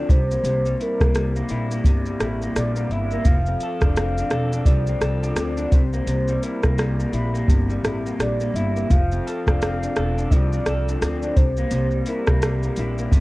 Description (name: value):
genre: indie pop, bedroom pop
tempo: 85 BPM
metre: 4/4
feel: swing 60% on 16ths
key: F major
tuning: A4 = 440 Hz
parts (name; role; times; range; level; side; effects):
- soft octave-layered synth lead; melody; 0.0-12.7 s; Bb4 to F5; -28 LUFS; equal; phaser, wide subtle chorus, analog delay
- electric guitar through a small old amp; accompaniment; 0.0-13.2 s; C3 to A4; -26 LUFS; left 2 dB; lush chorus, warbly pitch drift
- upright bass; bass; 0.1-13.2 s; E1 to D2; -24 LUFS; equal; none
- soft vintage rhythm box; drums; 0.1-13.2 s; hi-hat, kick drum, rim click, shaker; -19 LUFS; equal; none
room: digital ambience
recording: worn, warbling old tape, cassette tape, warbly pitch drift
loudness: -19 LUFS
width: side -20 dB against mid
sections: 0.0-13.2 A section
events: none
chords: 0.1 C7; 3.3 F6; 5.7 C7; 8.9 F6; 11.4 C7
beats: | 0.44 1.15 1.85 2.56 | 3.26 3.96 4.67 5.37 | 6.08 6.78 7.49 8.19 | 8.90 9.60 10.31 11.01 | 11.71 12.42 13.12